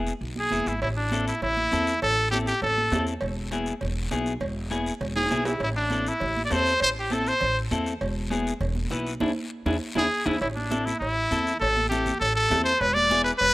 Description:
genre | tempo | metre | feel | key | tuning
latin, cumbia | 200 BPM | 4/4 | straight | A harmonic minor | A4 = 440 Hz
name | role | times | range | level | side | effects
clean electric guitar | accompaniment | 0.0-13.3 s | B3 to B4 | -31 LUFS | left 3 dB | none
upright bass | bass | 0.0-13.5 s | E1 to E2 | -31 LUFS | equal | none
guiro | percussion | 0.1-13.5 s | none | -41 LUFS | left 3 dB | none
bright trumpet | melody | 0.4-3.0, 5.2-7.6, 10.0-13.5 s | D4 to D5 | -24 LUFS | equal | none
congas | percussion | 0.4-13.5 s | none | -34 LUFS | right 3 dB | none
cowbell and timbales | percussion | 0.8-13.5 s | none | -33 LUFS | right 2 dB | none
room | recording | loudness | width
light reverb, small room ambience | rough home demo mix | -23 LUFS | side -19 dB against mid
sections
0.8-10.4 A section; 10.4-13.5 A section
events
drum fill 5.2-5.6, 9.7-10.4; band accent 9.2-10.4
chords
0.0 E; 0.8 Am; 3.2 E; 5.6 Am; 8.0 E7; 10.4 Am; 12.8 E7

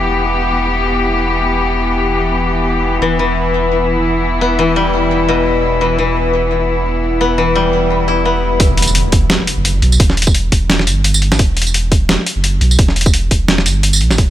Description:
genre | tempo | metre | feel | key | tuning
half-time drum and bass | 172 BPM | 4/4 | swing 56% on 16ths, half-time | E minor | A4 = 439 Hz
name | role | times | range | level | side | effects
warm studio cello section | sustained chords | 0.0-8.6 s | E3 to G4 | -16 LUFS | left 2 dB | sidechain pumping
saturated sub bass | bass | 0.0-14.3 s | E1 to B1 | -17 LUFS | right 1 dB | tube saturation
koto | arpeggios | 3.0-10.9 s | B2 to E4 | -15 LUFS | left 2 dB | digital delay
boom bap sampler-style drum kit | drums | 8.6-14.3 s | hi-hat, snare drum, tambourine | -15 LUFS | equal | low-pass filter on snare, studio reverb, low-pass filter on hats, low-pass filter on perc
electronic kick drum | drums | 8.6-14.3 s | none | -13 LUFS | equal | studio reverb
impact | sound effects | 8.6-10.0 s | none | -23 LUFS | right 1 dB | none
room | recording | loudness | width
light reverb | none | -11 LUFS | side -12 dB against mid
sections
0.0-8.6 A section; 8.6-14.3 B section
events
drop 8.6-14.3; impact 8.6-10.0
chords
0.0 Em

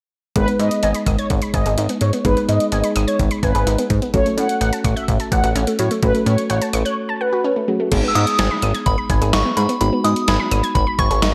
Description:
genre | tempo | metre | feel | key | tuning
synth-pop | 127 BPM | 4/4 | straight | unclear | A4 = 441 Hz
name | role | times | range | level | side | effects
mellow synth brass | second line | 0.4-7.5 s | B4 to F#5 | -25 LUFS | equal | chorus, phaser, slapback echo
muted felt-like synth keys | accompaniment | 0.4-11.3 s | G#3 to A4 | -26 LUFS | equal | chorus
analog pluck | arpeggios | 0.4-11.3 s | F#3 to G#6 | -27 LUFS | equal | chorus, slapback echo
chorused synth bass | bass | 0.4-11.3 s | G#1 to A2 | -22 LUFS | equal | none
detuned 8-bit digital drum machine | drums | 0.4-11.3 s | crash cymbal, hi-hat, kick drum, snare drum | -24 LUFS | equal | gated reverb
soft synth bell | melody | 8.1-11.3 s | B5 to E6 | -23 LUFS | equal | chorus, slapback echo
room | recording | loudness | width
light reverb, digital ambience | none | -18 LUFS | mono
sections
0.4-7.9 A section; 7.9-11.3 B section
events
none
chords
0.4 G#m; 4.1 F#m/A; 7.9 G#m

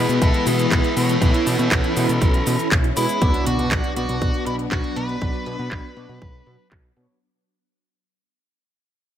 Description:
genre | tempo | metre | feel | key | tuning
italo disco | 120 BPM | 4/4 | straight | B dorian | A4 = 440 Hz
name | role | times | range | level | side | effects
nasal lead guitar with a parked wah | melody | 0.0-6.7 s | E4 to C#5 | -26 LUFS | left 1 dB | overdrive, vintage 12-bit sampler grit, ping-pong delay
phased string machine | sustained chords | 0.0-7.2 s | E3 to E4 | -26 LUFS | left 1 dB | ensemble chorus, phaser
analog synth brass | stabs | 0.0-7.2 s | E3 to D5 | -27 LUFS | right 2 dB | chorus
fat analog bass | bass | 0.0-7.1 s | B1 to B2 | -24 LUFS | equal | tube saturation
house drum kit | drums | 0.1-7.2 s | cabasa, handclaps, hi-hat | -26 LUFS | right 1 dB | low-pass filter on hats, low-pass filter on perc, low-pass filter on snare, low-pass filter on room
electronic kick drum | drums | 0.2-6.8 s | none | -21 LUFS | equal | none
impact | sound effects | 3.2-5.2 s | none | -30 LUFS | equal | none
room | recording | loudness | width
light reverb, digital ambience | none | -18 LUFS | side -10 dB against mid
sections
0.0-3.2 A section; 3.2-7.2 B section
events
fade-out 3.2-7.2; impact 3.2-5.2; filter sweep on drum 3.2-7.2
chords
0.0 E/B; 3.2 Bm

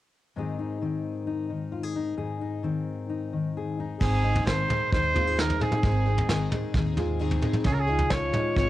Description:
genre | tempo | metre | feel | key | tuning
indie folk with a building arrangement | 132 BPM | 4/4 | straight | Ab major | A4 = 440 Hz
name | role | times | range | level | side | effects
fingerpicked steel-string acoustic guitar | accompaniment | 0.4-8.7 s | Ab2 to Ab4 | -30 LUFS | left 4 dB | cassette tape
bright trumpet | melody | 4.0-8.7 s | Ab4 to Db5 | -27 LUFS | right 2 dB | cassette tape
picked plugged-in twelve-string acoustic guitar | accompaniment | 4.0-8.7 s | Ab2 to Ab4 | -34 LUFS | left 6 dB | cassette tape
warm upright piano | arpeggios | 4.0-8.7 s | C4 to F4 | -36 LUFS | right 7 dB | cassette tape
upright bass | bass | 4.0-8.7 s | Ab1 to Eb2 | -28 LUFS | right 1 dB | none
soft brush drum kit | drums | 4.0-8.7 s | crash cymbal, kick drum, snare drum, toms | -28 LUFS | right 1 dB | cassette tape
room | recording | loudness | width
little or no reverb | home recording on cassette | -24 LUFS | side -15 dB against mid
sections
0.4-4.0 A section; 4.0-8.7 B section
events
none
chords
0.4 Ab; 7.7 Db

